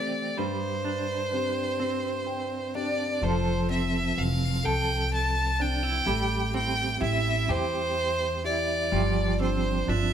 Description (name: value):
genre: acoustic folk-pop ballad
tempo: 42 BPM (dotted quarters)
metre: 6/8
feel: straight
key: unclear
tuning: A4 = 440 Hz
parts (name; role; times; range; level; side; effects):
- bright violin; melody; 0.0-10.1 s; C5 to A5; -28 LUFS; right 1 dB; none
- warm grand piano; accompaniment; 0.0-10.1 s; G2 to G5; -33 LUFS; left 4 dB; none
- clean electric guitar; arpeggios; 0.0-10.1 s; E3 to A4; -31 LUFS; right 4 dB; tremolo
- upright bass; bass; 3.2-10.1 s; F1 to E2; -29 LUFS; equal; none
room: moderate stone room reverb, RT60 1.1 s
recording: band playing live in one room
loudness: -24 LUFS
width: side -9 dB against mid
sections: 0.0-3.2 A section; 3.2-10.1 B section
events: none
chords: 0.4 Gsus4; 3.2 Fmaj7; 6.1 Am7; 8.9 G7sus4